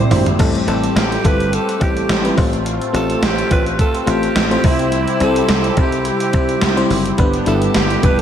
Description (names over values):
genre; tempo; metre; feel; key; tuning
1980s-style pop; 106 BPM; 4/4; swing 55% on 16ths; C major; A4 = 441 Hz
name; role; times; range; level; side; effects
breathy alto saxophone; melody; 0.0-8.2 s; E4 to C5; -22 LUFS; right 2 dB; shimmer reverb
FM electric piano; accompaniment; 0.0-8.2 s; G2 to D5; -19 LUFS; left 2 dB; chorus, shimmer reverb, slapback echo
brassy analog pad; sustained chords; 0.0-8.2 s; C3 to G4; -24 LUFS; right 2 dB; chorus, shimmer reverb
dry thumbed slap bass; bass; 0.0-8.2 s; F1 to C2; -21 LUFS; equal; none
gated 80s digital drum machine; drums; 0.1-8.2 s; crash cymbal, hi-hat, kick drum, snare drum, toms; -18 LUFS; right 1 dB; gated reverb, gated reverb snare
room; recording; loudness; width
moderate lush hall reverb, RT60 2.0 s; big arena sound; -13 LUFS; side -9 dB against mid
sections
0.4-8.2 A section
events
drum fill 0.0-0.4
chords
0.4 Am7; 2.4 F/A; 4.6 C; 7.2 G